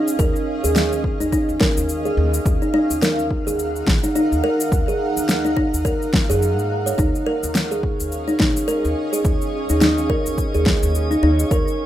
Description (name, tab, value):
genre	organic downtempo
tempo	106 BPM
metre	4/4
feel	swing 58% on 16ths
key	unclear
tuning	A4 = 436 Hz
part	granular cloud pad	sustained chords	0.0-11.9 s	Db4 to Gb5	-26 LUFS	right 1 dB	built-in reverb, sidechain pumping
part	electronic cabasa and snare drum	drums	0.1-11.8 s	none	-22 LUFS	left 1 dB	overdrive
part	kalimba	arpeggios	0.2-11.7 s	Eb4 to Db5	-21 LUFS	equal	tape echo
part	upright bass	bass	0.2-11.6 s	Bb1 to Ab2	-23 LUFS	equal	sidechain pumping
part	electronic kick drum	drums	0.2-11.6 s	none	-22 LUFS	equal	overdrive
part	drifting glass-harmonics texture	texture	7.6-11.9 s	Db5	-33 LUFS	right 4 dB	chorus, built-in reverb
room	moderate studio reverb, RT60 0.6 s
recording	rough home demo mix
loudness	-17 LUFS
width	side -12 dB against mid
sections	0.0-11.9 A section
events	none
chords	0.0 Db; 2.5 Ebm; 7.0 Db